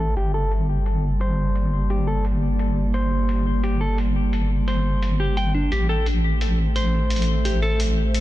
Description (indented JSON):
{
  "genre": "half-time drum and bass",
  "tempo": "173 BPM",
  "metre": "4/4",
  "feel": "half-time",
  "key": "G dorian",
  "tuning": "A4 = 439 Hz",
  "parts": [
    { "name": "dark analog pad", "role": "sustained chords", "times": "0.0-8.2 s", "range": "G3 to E5", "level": "-28 LUFS", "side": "right 2 dB", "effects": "chorus" },
    { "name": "clean electric guitar", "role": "arpeggios", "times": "0.0-7.8 s", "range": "D4 to G5", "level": "-28 LUFS", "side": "left 2 dB", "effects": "low-pass filter, ping-pong delay" },
    { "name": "deep soft wobble bass", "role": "bass", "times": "0.0-8.2 s", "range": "G1 to A1", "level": "-21 LUFS", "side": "equal", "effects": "chorus, tube saturation" },
    { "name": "electronic hi-hat", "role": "drums", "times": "0.2-8.2 s", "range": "none", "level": "-36 LUFS", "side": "equal", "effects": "none" }
  ],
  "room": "little or no reverb",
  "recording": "dense, heavily limited modern master, low-pass filter",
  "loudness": "-19 LUFS",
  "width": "side -15 dB against mid",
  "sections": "0.0-8.2 A section",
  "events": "filter sweep on analog synth pad 0.0-8.2; filter sweep on clean electric guitar 0.0-8.2; filter sweep 0.0-8.2",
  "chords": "0.2 Gm; 5.7 Am"
}